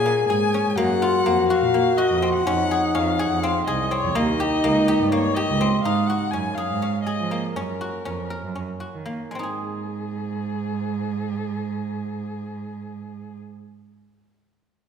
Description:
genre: contemporary instrumental, chamber music in an uneven meter.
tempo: 233-249 BPM (eighths).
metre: 7/8.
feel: straight.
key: Ab mixolydian.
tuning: A4 = 440 Hz.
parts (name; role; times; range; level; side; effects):
warm violin; melody; 0.0-13.4 s; Ab4 to Ab5; -28 LUFS; left 6 dB; none.
mellow French horn; second line; 0.0-5.6 s; Eb4 to Ab4; -22 LUFS; left 2 dB; none.
guzheng; arpeggios; 0.0-13.5 s; Ab3 to Bb4; -26 LUFS; equal; none.
warm cello; bass; 0.0-13.4 s; C2 to F3; -27 LUFS; right 5 dB; none.
room: wet recital hall reverb, RT60 1.7 s.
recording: none.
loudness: -20 LUFS.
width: side -7 dB against mid.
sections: 0.0-5.8 A section; 5.8-9.3 B section; 9.3-12.9 C section.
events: slowing down 5.8-9.3.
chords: 0.0 Bbm7; 0.8 Gbmaj7; 2.5 Dbmaj9/F; 4.2 Eb7; 5.8 Ab7sus4; 7.6 Gb; 9.3 Ab.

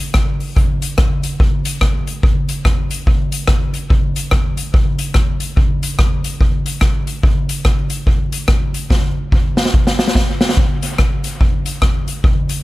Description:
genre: ska.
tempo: 144 BPM.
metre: 4/4.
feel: swing 60% on 8ths.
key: none.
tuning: none.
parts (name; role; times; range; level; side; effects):
street-band drum kit; drums; 0.1-12.6 s; hi-hat, kick drum, rim click, snare drum; -14 LUFS; equal; none.
room: light reverb.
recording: none.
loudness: -14 LUFS.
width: side -18 dB against mid.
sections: 0.0-10.6 A section; 10.6-12.6 B section.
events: drum fill 8.9-10.6.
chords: none.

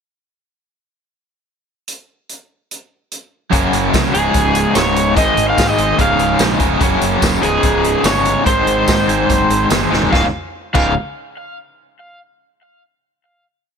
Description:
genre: classic rock.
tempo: 146 BPM.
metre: 4/4.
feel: straight.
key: unclear.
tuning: A4 = 440 Hz.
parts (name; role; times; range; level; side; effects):
vintage drum kit; drums; 1.9-10.8 s; crash cymbal, hi-hat, kick drum, snare drum, tambourine, toms; -19 LUFS; equal; none.
cranked stack guitar; riff; 3.5-10.9 s; Db2 to Ab3; -18 LUFS; left 13 dB; overdrive, tremolo.
cranked stack guitar; riff; 3.5-10.9 s; Db2 to Ab4; -19 LUFS; right 14 dB; overdrive.
fuzz fingered electric bass; bass; 3.5-10.9 s; Db1 to Ab2; -22 LUFS; equal; overdrive.
overdriven slide guitar; melody; 4.1-10.9 s; Ab4 to F5; -18 LUFS; equal; none.
room: light reverb, small room ambience.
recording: none.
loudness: -12 LUFS.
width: side -6 dB against mid.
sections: 1.9-3.5 pickup bar; 3.5-10.1 pre-chorus; 10.1-11.8 final chord.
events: drum fill 9.9.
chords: 1.9 N.C.; 3.5 Gb; 4.1 Dbsus2; 5.2 Ab; 6.0 Dbadd9; 6.8 Gb; 7.4 Dbsus2; 8.5 Ab; 10.1 Dbsus2.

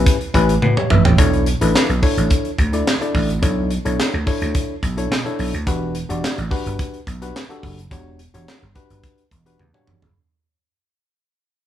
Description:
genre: early-eighties boogie funk.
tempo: 107 BPM.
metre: 4/4.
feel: straight.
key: E dorian.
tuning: A4 = 440 Hz.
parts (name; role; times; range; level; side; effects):
tine electric piano; accompaniment; 0.0-10.0 s; C#4 to G5; -23 LUFS; left 3 dB; none.
vintage slap bass; bass; 0.0-10.1 s; E1 to B2; -20 LUFS; right 1 dB; none.
tight funk drum kit; drums; 0.1-10.1 s; handclaps, hi-hat, kick drum, snare drum, toms; -19 LUFS; right 1 dB; none.
room: light reverb.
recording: band playing live in one room.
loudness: -16 LUFS.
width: side -11 dB against mid.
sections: 0.0-1.2 A section; 1.2-10.2 B section.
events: drum fill 0.6-1.2, 9.6-10.2; fade-out 1.2-10.2.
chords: 0.0 A9; 1.2 Bm11; 5.7 Em9.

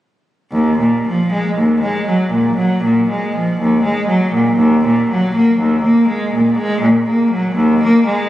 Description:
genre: classical, baroque-style suite movement for unaccompanied cello.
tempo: 60 BPM.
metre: 4/4.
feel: rubato.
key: Eb minor.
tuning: A4 = 439 Hz.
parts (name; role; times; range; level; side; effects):
rich cello; solo; 0.5-8.3 s; Eb2 to Bb3; -12 LUFS; equal; none.
room: wet church reverb, RT60 3.5 s.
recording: recorded on a phone in the room, studio reverb.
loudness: -12 LUFS.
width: side -14 dB against mid.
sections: 0.5-8.3 A section.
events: none.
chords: none.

